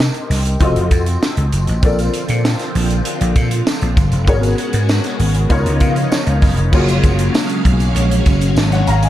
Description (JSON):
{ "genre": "polished 1980s jazz-funk pop", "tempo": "98 BPM", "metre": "4/4", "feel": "straight", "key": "F# major", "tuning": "A4 = 440 Hz", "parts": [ { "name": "warm concert grand piano", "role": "accompaniment", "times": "0.0-9.1 s", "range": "A#3 to A#5", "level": "-21 LUFS", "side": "left 3 dB", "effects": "ensemble chorus" }, { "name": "vintage slap bass", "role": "bass", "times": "0.0-9.1 s", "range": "F1 to C#3", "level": "-16 LUFS", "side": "equal", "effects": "none" }, { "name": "crisp fusion drum kit", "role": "drums", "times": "0.0-9.1 s", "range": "crash cymbal, hi-hat, kick drum, snare drum", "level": "-18 LUFS", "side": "equal", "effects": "none" }, { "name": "tambourine", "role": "percussion", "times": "0.4-9.0 s", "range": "none", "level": "-35 LUFS", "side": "right 4 dB", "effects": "none" }, { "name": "phased string machine", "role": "sustained chords", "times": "1.8-9.1 s", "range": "C#3 to E#5", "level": "-22 LUFS", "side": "equal", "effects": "ensemble chorus, phaser" } ], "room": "studio reverb", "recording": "dark, warm production", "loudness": "-13 LUFS", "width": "side -13 dB against mid", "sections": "0.0-6.7 A section; 6.7-9.1 B section", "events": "grand piano fill 5.5-6.7", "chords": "0.0 Cm7; 0.6 F7b9; 1.8 A#maj9; 4.3 G#m11; 5.5 C#13; 6.7 F#maj9" }